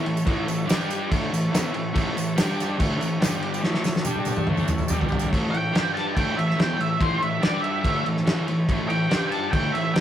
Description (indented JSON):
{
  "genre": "garage rock duo or trio",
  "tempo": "143 BPM",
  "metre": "4/4",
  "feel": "straight",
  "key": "A major",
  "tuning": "A4 = 440 Hz",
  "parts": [
    { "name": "overdriven combo organ", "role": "sustained chords", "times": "0.0-10.0 s", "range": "D4 to D5", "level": "-32 LUFS", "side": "equal", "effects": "none" },
    { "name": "fuzz guitar", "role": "riff", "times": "0.0-10.0 s", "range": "G2 to G4", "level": "-26 LUFS", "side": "equal", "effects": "distortion" },
    { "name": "cloth-damped thuddy drum kit", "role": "drums", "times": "0.1-10.0 s", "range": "crash cymbal, kick drum, snare drum, toms", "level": "-24 LUFS", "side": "equal", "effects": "none" },
    { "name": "tambourine", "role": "percussion", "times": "0.2-5.3 s", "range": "none", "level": "-39 LUFS", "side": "right 6 dB", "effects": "none" },
    { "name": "octave-fuzz lead guitar", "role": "melody", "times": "5.5-10.0 s", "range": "C5 to A5", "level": "-26 LUFS", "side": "right 1 dB", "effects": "distortion" }
  ],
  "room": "moderate studio reverb, RT60 0.7 s",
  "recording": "rough rehearsal-room recording",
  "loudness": "-21 LUFS",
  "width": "side -10 dB against mid",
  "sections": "0.0-5.3 A section; 5.3-10.0 B section",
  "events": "drum fill 3.6-5.3; lead electric guitar solo 5.3-10.0",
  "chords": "0.0 A; 0.7 G5; 1.1 A; 2.4 G5; 2.8 A; 3.2 G5; 3.6 A; 4.1 G5; 4.5 A; 4.9 G5; 5.3 A; 5.7 G5; 6.2 A; 7.4 G5; 7.8 A; 9.1 G5; 9.5 A"
}